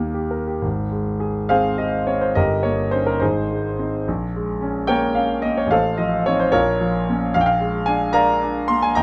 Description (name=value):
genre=classical, romantic character piece for solo piano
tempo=58-78 BPM (dotted quarters)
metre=6/8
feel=rubato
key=Ab major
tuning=A4 = 443 Hz
part: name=clear concert grand piano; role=solo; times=0.0-9.0 s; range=G1 to C6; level=-20 LUFS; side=equal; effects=none
room=light reverb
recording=dark, warm production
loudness=-20 LUFS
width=mono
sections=0.6-9.0 A section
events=none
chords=0.0 Eb; 0.6 Ab; 2.4 Eb7/G; 3.2 Ab; 4.1 Bbm7; 5.7 F7/A; 6.5 Bbm; 7.3 Bb7